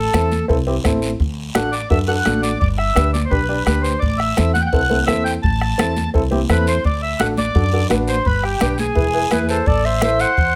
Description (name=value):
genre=latin, cumbia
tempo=170 BPM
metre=4/4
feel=straight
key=A dorian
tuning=A4 = 440 Hz
part: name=accordion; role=second line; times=0.0-10.6 s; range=G4 to A5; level=-24 LUFS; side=equal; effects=none
part: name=upright bass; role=bass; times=0.0-10.6 s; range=E1 to F#2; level=-23 LUFS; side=equal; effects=none
part: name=warm upright piano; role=accompaniment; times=0.1-10.3 s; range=C4 to D5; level=-24 LUFS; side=equal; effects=none
part: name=bombo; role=percussion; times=0.1-10.5 s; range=none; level=-23 LUFS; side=equal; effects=none
part: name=congas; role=percussion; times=0.1-10.5 s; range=none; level=-27 LUFS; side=equal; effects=none
part: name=guiro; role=percussion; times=0.1-10.6 s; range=none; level=-34 LUFS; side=equal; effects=none
part: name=mellow clarinet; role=melody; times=9.3-10.6 s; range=B4 to F#5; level=-21 LUFS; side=equal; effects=slapback echo
room=light reverb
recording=close, detailed microphones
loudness=-18 LUFS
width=mono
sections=0.0-9.7 A section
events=accordion solo 0.0-9.7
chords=0.0 Am; 1.2 D; 2.6 G; 4.0 Am; 6.8 D6; 8.3 G; 9.0 E; 9.7 Am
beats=0.14 0.49 0.85 | 1.20 1.55 1.91 2.26 | 2.61 2.97 3.32 3.67 | 4.03 4.38 4.73 5.08 | 5.44 5.79 6.14 6.49 | 6.85 7.20 7.55 7.90 | 8.26 8.61 8.96 9.31 | 9.67 10.02 10.37